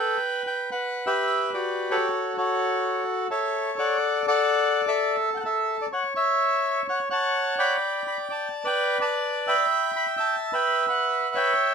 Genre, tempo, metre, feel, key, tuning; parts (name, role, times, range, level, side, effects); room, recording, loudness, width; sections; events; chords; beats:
tango; 127 BPM; 4/4; rubato; A4 = 440 Hz
bandoneon; solo; 0.0-11.7 s; F#4 to B5; -22 LUFS; equal
moderate studio ambience, RT60 0.5 s; minimal, uncompressed stereo recording; -22 LUFS; side -6 dB against mid
0.2-11.7 A section
0.2 Emadd9; 2.1 A6; 4.0 D; 5.9 A6; 7.8 G; 9.7 Em
| 0.20 0.68 1.16 1.64 | 2.11 2.59 3.06 3.54 | 4.01 4.48 4.95 5.42 | 5.90 6.37 6.85 7.32 | 7.80 8.27 8.75 9.22 | 9.69 10.16 10.62 11.09 | 11.56